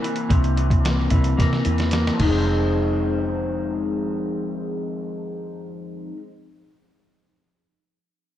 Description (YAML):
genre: indie pop, bedroom pop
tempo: 111 BPM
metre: 4/4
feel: straight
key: F minor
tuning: A4 = 440 Hz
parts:
  - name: electric guitar through a small old amp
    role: accompaniment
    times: 0.0-6.3 s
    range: F2 to C4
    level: -24 LUFS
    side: left 2 dB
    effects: lush chorus, warbly pitch drift
  - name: lo-fi sampler-style drum kit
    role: drums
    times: 0.0-2.3 s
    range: crash cymbal, hi-hat, kick drum, snare drum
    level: -23 LUFS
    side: equal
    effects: none
  - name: vintage muted fingered electric bass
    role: bass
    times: 0.3-6.1 s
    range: F1 to C3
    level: -23 LUFS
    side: equal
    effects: none
room: moderate echo chamber reverb, RT60 2.2 s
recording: dark, warm production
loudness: -19 LUFS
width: side -12 dB against mid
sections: 0.0-2.5 A section; 2.5-6.8 B section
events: drum fill 1.4-2.5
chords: 0.0 C7; 2.2 Fm7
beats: | 0.30 0.84 1.38 1.93 | 2.46 3.01 3.55 4.09 | 4.63 5.17 5.71 6.25